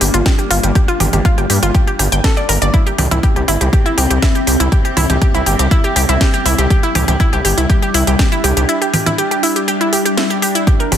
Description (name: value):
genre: melodic techno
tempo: 121 BPM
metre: 4/4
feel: straight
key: unclear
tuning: A4 = 441 Hz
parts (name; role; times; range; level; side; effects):
- evolving wavetable pad; sustained chords; 0.0-11.0 s; G3 to E4; -21 LUFS; left 1 dB; chorus, built-in reverb, phaser, sidechain pumping
- wide unison pluck; arpeggios; 0.0-11.0 s; E4 to G5; -17 LUFS; equal; sidechain pumping, tape echo
- gritty driven synth bass; bass; 0.0-11.0 s; G1 to G2; -16 LUFS; equal; sidechain pumping
- techno drum kit; drums; 0.0-11.0 s; congas, hi-hat, snare drum; -18 LUFS; equal; overdrive, studio reverb
- electronic kick drum; drums; 0.3-10.8 s; none; -13 LUFS; equal; studio reverb
room: light reverb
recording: dense, heavily limited modern master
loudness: -11 LUFS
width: side -9 dB against mid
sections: 0.0-11.0 A section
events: none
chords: 0.0 Gm; 2.7 C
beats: 0.26 | 0.75 1.25 1.75 2.24 | 2.74 3.23 3.73 4.22 | 4.72 5.22 5.71 6.21 | 6.70 7.20 7.70 8.19 | 8.69 9.18 9.68 10.18 | 10.67